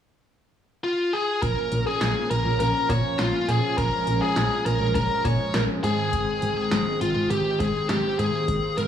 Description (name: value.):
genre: synth-pop.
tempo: 102 BPM.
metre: 4/4.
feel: straight.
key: Bb dorian.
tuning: A4 = 440 Hz.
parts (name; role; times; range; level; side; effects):
biting lead guitar; melody; 0.8-8.9 s; F4 to Db5; -24 LUFS; left 1 dB; overdrive, tape echo.
warm analog pad; sustained chords; 1.4-8.9 s; Eb3 to Db4; -30 LUFS; equal; chorus, tremolo.
solid FM bass; bass; 1.4-8.9 s; Ab1 to Bb2; -25 LUFS; equal; none.
electro analog drum machine; drums; 1.4-8.9 s; hi-hat, kick drum, snare drum; -30 LUFS; equal; gated reverb.
room: light reverb.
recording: small room ambience.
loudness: -21 LUFS.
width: side -9 dB against mid.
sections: 0.0-1.4 A section; 1.4-8.9 B section.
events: none.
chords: 0.0 N.C.; 1.4 Bbm; 5.8 Ab.